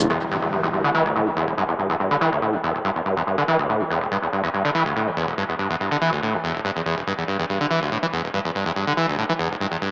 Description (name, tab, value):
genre	techno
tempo	142 BPM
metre	4/4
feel	straight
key	E minor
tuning	A4 = 439 Hz
part	overdriven acid bass	riff	0.0-9.9 s	E1 to E3	-20 LUFS	equal	distortion, lush chorus, analog delay
part	impact	sound effects	0.1-1.8 s	none	-33 LUFS	equal	none
room	wet spring reverb, RT60 1.2 s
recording	echo-heavy mix, small speaker sound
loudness	-20 LUFS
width	side -25 dB against mid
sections	0.1-9.9 A section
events	impact 0.1-1.8; filter sweep on acid bass 0.1-9.9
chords	none